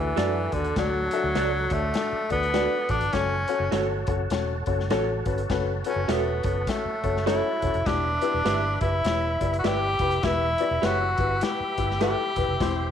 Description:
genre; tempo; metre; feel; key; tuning
uptempo 1960s-style soul; 101 BPM; 4/4; swing 60% on 8ths; unclear; A4 = 440 Hz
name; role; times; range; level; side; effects
breathy tenor saxophone; melody; 0.0-12.9 s; D3 to G4; -26 LUFS; left 1 dB; slapback echo
warm upright piano; accompaniment; 0.0-12.9 s; D3 to E5; -30 LUFS; left 8 dB; none
percussive tonewheel organ; sustained chords; 0.0-12.9 s; A4 to C6; -37 LUFS; right 1 dB; fast rotary speaker, chorus vibrato
vintage muted fingered electric bass; bass; 0.0-12.9 s; E1 to F#2; -29 LUFS; right 2 dB; none
electric guitar through a small old amp; stabs; 0.2-12.2 s; F#4 to E5; -32 LUFS; right 11 dB; tube saturation, spring reverb, slapback echo
swinging big-band drum kit; drums; 0.2-12.8 s; hi-hat, kick drum, snare drum; -31 LUFS; left 2 dB; none
room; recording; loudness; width
moderate echo chamber reverb, RT60 1.5 s, studio reverb; 1960s-style stereo with parts hard left and right; -22 LUFS; side -8 dB against mid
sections
0.0-12.9 A section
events
tenor saxophone solo 0.0-12.9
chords
0.0 D; 3.1 F#m; 7.9 Em

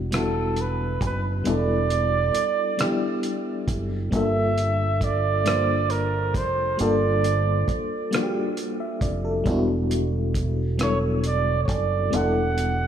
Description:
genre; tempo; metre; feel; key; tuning
slow six-eight R&B; 45 BPM (dotted quarters); 6/8; straight; unclear; A4 = 444 Hz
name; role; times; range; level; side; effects
FM electric piano with tremolo; accompaniment; 0.0-12.9 s; F#3 to E5; -26 LUFS; left 2 dB; none
deep dub fingered electric bass; bass; 0.0-12.9 s; E1 to G1; -25 LUFS; right 1 dB; none
cloth-damped thuddy drum kit; drums; 0.1-12.8 s; hi-hat, kick drum, rim click; -29 LUFS; right 1 dB; none
breathy flugelhorn; melody; 0.2-12.9 s; A4 to F#5; -26 LUFS; right 5 dB; diffuse ambient delay
room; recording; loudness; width
moderate plate reverb, RT60 3.2 s; dreamy mix soaked in reverb, studio ambience; -21 LUFS; side -9 dB against mid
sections
0.0-12.9 A section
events
none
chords
0.0 Em9; 4.1 Gm9; 9.5 Em9

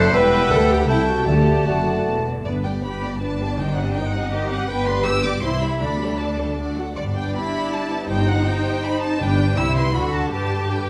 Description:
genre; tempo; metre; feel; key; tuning
quick classical-period movement for symphony orchestra; 150-166 BPM; 3/4; rubato; G major; A4 = 439 Hz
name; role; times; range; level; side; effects
rich chamber violin section; melody; 0.0-10.9 s; D5 to E6; -31 LUFS; equal; none
bright small flute group; second line; 0.0-2.2 s; G5 to A5; -30 LUFS; equal; none
clear oboe; second line; 0.0-2.3 s; E5 to A5; -29 LUFS; equal; none
dark clarinet; second line; 0.0-2.2 s; D5 to E5; -35 LUFS; equal; none
rich chamber violin section; second line; 0.0-10.9 s; G3 to A5; -33 LUFS; equal; none
dark bassoon; accompaniment; 0.0-2.2 s; A3 to B3; -27 LUFS; equal; none
rich chamber viola section; accompaniment; 0.0-10.8 s; D3 to C5; -28 LUFS; equal; none
dark French horn section; sustained chords; 0.0-2.3 s; F#3 to B4; -27 LUFS; equal; none
rich symphonic double bass section; bass; 0.0-10.9 s; E1 to G2; -26 LUFS; equal; none
warm chamber cello section; bass; 0.0-10.9 s; C2 to B4; -28 LUFS; equal; none
timpani; percussion; 1.3-4.1, 9.2-9.5 s; G2 to D3; -28 LUFS; equal; none
room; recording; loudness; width
wet recital hall reverb, RT60 1.5 s; none; -21 LUFS; mono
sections
0.0-2.5 A section; 2.5-10.9 B section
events
none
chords
0.1 Em; 0.9 Am7/C; 1.3 D; 2.5 G; 3.6 Cm/G; 4.7 G; 5.4 C; 5.8 Dsus4; 6.6 D; 7.0 G; 8.1 Cm/G; 9.2 G; 9.6 C; 9.9 D; 10.3 G

